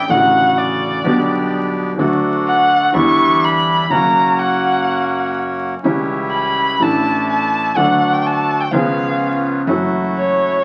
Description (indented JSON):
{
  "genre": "tango",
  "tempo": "125 BPM",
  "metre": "4/4",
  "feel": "rubato",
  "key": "unclear",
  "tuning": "A4 = 438 Hz",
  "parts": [
    { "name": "warm violin", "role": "second line", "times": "0.0-10.6 s", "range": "C#5 to C#6", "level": "-18 LUFS", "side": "equal", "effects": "none" },
    { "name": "clear grand piano", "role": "accompaniment", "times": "0.0-10.6 s", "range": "A1 to A4", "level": "-21 LUFS", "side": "equal", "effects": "none" },
    { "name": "bandoneon", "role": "stabs", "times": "0.0-10.6 s", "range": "C#3 to G4", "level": "-23 LUFS", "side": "equal", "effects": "none" },
    { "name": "upright bass", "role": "bass", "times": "0.0-10.6 s", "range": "F#1 to E2", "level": "-32 LUFS", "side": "equal", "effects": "none" }
  ],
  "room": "wet club reverb, RT60 0.7 s",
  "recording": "very old 78 rpm record, vinyl crackle",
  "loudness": "-16 LUFS",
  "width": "mono",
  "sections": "0.0-10.6 A section",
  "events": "violin solo 0.0-10.6",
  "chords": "0.1 Dmaj7/A; 1.0 G/B; 2.0 D; 3.0 Em7; 3.9 F#; 5.8 C#dim; 6.8 Asus4; 7.8 D; 8.7 C#7; 9.7 F#m7"
}